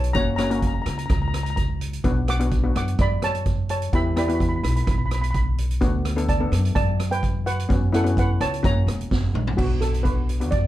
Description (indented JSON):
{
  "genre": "calypso",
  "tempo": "127 BPM",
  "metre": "4/4",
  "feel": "straight",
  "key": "B minor",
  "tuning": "A4 = 442 Hz",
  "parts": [
    { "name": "steel pan", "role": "melody", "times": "0.0-10.7 s", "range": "F#4 to D6", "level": "-28 LUFS", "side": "right 2 dB", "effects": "none" },
    { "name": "upright bass", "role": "bass", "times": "0.0-10.7 s", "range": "E1 to F#2", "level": "-23 LUFS", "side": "equal", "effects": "none" },
    { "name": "street-band drum kit", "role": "drums", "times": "0.0-10.6 s", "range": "crash cymbal, hi-hat, kick drum, rim click, snare drum, toms", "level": "-25 LUFS", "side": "right 1 dB", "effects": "none" },
    { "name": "steel pan", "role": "accompaniment", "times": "0.1-10.6 s", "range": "A#3 to A4", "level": "-27 LUFS", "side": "left 3 dB", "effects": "none" }
  ],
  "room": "light reverb",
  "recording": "dark, warm production",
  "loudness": "-20 LUFS",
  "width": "side -14 dB against mid",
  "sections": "0.0-9.6 A section; 9.6-10.7 B section",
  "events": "drum fill 9.1-9.6; steel pan solo 9.6-10.7",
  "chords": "0.2 F#; 2.0 Bm; 3.9 E5; 5.8 Bm/D; 7.7 F#sus4; 8.6 F#; 9.6 Bm"
}